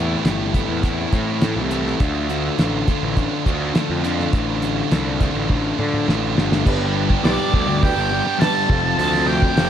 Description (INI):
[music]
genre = classic rock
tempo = 103 BPM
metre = 4/4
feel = straight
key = unclear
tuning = A4 = 440 Hz
[part]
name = overdriven semi-hollow guitar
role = riff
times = 0.0-9.7 s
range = F2 to G4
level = -24 LUFS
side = left 10 dB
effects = none
[part]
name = sludgy distorted guitar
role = riff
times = 0.0-9.7 s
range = F2 to G4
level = -24 LUFS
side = right 12 dB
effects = overdrive
[part]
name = fuzz picked electric bass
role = bass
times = 0.0-9.7 s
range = F1 to D3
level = -24 LUFS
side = equal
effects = overdrive
[part]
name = cloth-damped thuddy drum kit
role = drums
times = 0.2-9.7 s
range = crash cymbal, hi-hat, kick drum, snare drum, toms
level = -20 LUFS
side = equal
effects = none
[part]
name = bright upright piano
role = accompaniment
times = 6.7-9.7 s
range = D4 to C5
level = -29 LUFS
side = right 1 dB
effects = none
[part]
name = octave-fuzz lead guitar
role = melody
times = 7.2-9.7 s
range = D5 to A5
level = -22 LUFS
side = right 2 dB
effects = distortion, slapback echo
[part]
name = octave-fuzz lead guitar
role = second line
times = 7.2-9.7 s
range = D4 to A4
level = -27 LUFS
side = right 4 dB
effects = distortion
[sound]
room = small room ambience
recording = none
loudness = -17 LUFS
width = side -9 dB against mid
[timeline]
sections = 0.0-6.7 A section; 6.7-9.7 B section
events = drum fill 5.5-6.7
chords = 0.0 Am; 2.0 Dm; 6.7 G; 8.7 F